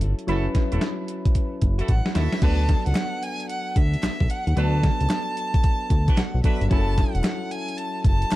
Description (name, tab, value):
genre	R&B, new jack swing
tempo	112 BPM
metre	4/4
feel	swing 64% on 16ths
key	unclear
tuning	A4 = 442 Hz
part	soft electric-piano-like synth keys	accompaniment	0.0-8.4 s	F#3 to B4	-31 LUFS	left 1 dB	chorus
part	fat analog bass	bass	0.0-8.4 s	E1 to D#2	-22 LUFS	equal	none
part	crisp 8-bit digital drum machine	drums	0.0-8.4 s	crash cymbal, hi-hat, kick drum, snare drum	-22 LUFS	equal	none
part	warm horn section	stabs	0.3-7.0 s	D4 to B4	-33 LUFS	right 2 dB	none
part	rich violin	melody	1.9-8.4 s	E5 to A5	-30 LUFS	right 1 dB	none
part	group handclap	percussion	3.0-8.4 s	none	-43 LUFS	right 7 dB	none
room	little or no reverb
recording	dark, warm production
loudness	-20 LUFS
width	side -16 dB against mid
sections	0.0-2.4 A section; 2.4-8.4 B section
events	drum fill 1.4-2.4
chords	0.0 F#m7; 2.4 D6; 6.7 F#m7